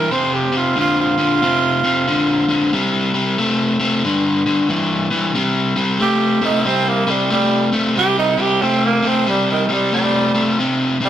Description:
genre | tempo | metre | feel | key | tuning
blues | 92 BPM | 4/4 | swing 63% on 8ths | unclear | A4 = 440 Hz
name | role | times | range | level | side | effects
growling tenor saxophone | melody | 0.0-11.1 s | Eb3 to C5 | -18 LUFS | right 4 dB | none
overdriven electric guitar | riff | 0.0-11.1 s | F2 to A3 | -16 LUFS | left 1 dB | none
room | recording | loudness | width
wet stone room reverb, RT60 1.3 s | rough rehearsal-room recording | -14 LUFS | side -10 dB against mid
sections
0.0-5.3 A section; 5.3-11.1 B section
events
tenor saxophone solo 5.3-11.1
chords
0.1 F5; 2.7 C5; 4.0 G5; 5.3 C5; 10.6 F5

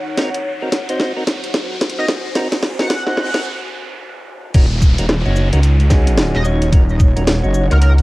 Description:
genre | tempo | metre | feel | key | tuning
glitch hop | 110 BPM | 4/4 | swing 61% on 16ths | Eb minor pentatonic | A4 = 440 Hz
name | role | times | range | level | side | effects
riser, noise sweep and downlifter | sound effects | 0.0-8.0 s | none | -29 LUFS | equal | none
ethereal airy pad | texture | 0.0-8.0 s | Eb4 to Ab5 | -27 LUFS | equal | ensemble chorus, built-in reverb, sidechain pumping, cassette tape
percussive tonewheel organ | stabs | 0.2-7.8 s | C4 to Db5 | -24 LUFS | equal | slow rotary speaker, sidechain pumping, low-pass filter, cassette tape, analog delay
drum and bass drum kit | drums | 0.2-8.0 s | crash cymbal, hi-hat, shaker, snare drum | -19 LUFS | equal | studio reverb, cassette tape
sync lead | melody | 2.0-7.9 s | Bb4 to Gb5 | -25 LUFS | equal | ensemble chorus, cassette tape, analog delay
wobble bass | bass | 4.5-8.0 s | Eb1 to Db2 | -14 LUFS | equal | chorus, overdrive
electronic kick drum | drums | 4.5-7.1 s | none | -11 LUFS | equal | studio reverb, cassette tape
room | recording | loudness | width
light reverb, digital ambience | home recording on cassette, high-pass filter | -13 LUFS | side -20 dB against mid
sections
0.0-4.5 A section; 4.5-8.0 B section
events
build-up 0.0-4.5; drum fill 0.0-3.5; riser 0.0-3.5; filter sweep 0.0-4.5; noise sweep 2.4-4.5; break 3.5-4.5; drop 4.5-8.0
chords
0.2 Ab7; 4.5 Ebm7

